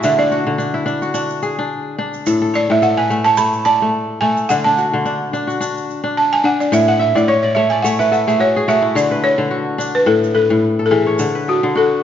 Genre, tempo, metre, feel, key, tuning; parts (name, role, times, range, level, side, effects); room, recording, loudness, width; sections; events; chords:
west african traditional, West African string and xylophone music; 108 BPM; 4/4; swing 56% on 16ths; D lydian; A4 = 440 Hz
balafon; melody; 0.0-12.0 s; F#4 to B5; -15 LUFS; right 1 dB
kora; arpeggios; 0.0-12.0 s; A2 to G#5; -18 LUFS; left 2 dB
tube shaker; percussion; 0.0-11.3 s; -35 LUFS; right 7 dB
wet recital hall reverb, RT60 1.6 s; nothing above 7.5 kHz; -14 LUFS; side -9 dB against mid
0.0-9.0 A section; 9.0-12.0 B section
balafon solo 0.0-9.0; kora fill 6.7-9.0
0.0 D; 2.3 A; 4.5 D; 6.7 A5; 9.0 D; 10.1 A5; 11.2 D